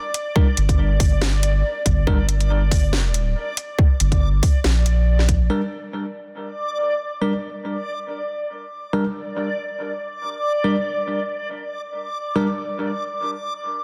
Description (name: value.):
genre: deep dubstep.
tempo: 140 BPM.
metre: 4/4.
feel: swing 55% on 16ths, half-time.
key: G minor.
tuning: A4 = 443 Hz.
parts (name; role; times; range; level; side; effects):
backwards swelling texture; texture; 0.0-13.8 s; D5; -29 LUFS; equal; built-in reverb.
garage drum kit; drums; 0.1-5.4 s; hi-hat, snare drum; -28 LUFS; equal; none.
bell-like tine electric piano; stabs; 0.4-2.2, 5.5-12.5 s; G3 to Bb4; -28 LUFS; equal; low-pass filter, dub echo.
electronic kick drum; drums; 0.4-5.4 s; none; -20 LUFS; equal; none.
soft dub sub bass; bass; 0.6-5.5 s; G1 to Bb1; -20 LUFS; equal; none.
room: light reverb.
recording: dense, heavily limited modern master.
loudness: -21 LUFS.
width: mono.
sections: 0.0-5.5 A section; 5.5-13.8 B section.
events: none.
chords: 0.0 Gm; 5.5 N.C..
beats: | 0.36 0.79 1.22 1.64 | 2.07 2.50 2.93 3.36 | 3.79 4.21 4.64 5.07 | 5.50 5.93 6.36 6.79 | 7.21 7.64 8.07 8.50 | 8.93 9.36 9.79 10.21 | 10.64 11.07 11.50 11.93 | 12.36 12.79 13.21 13.64.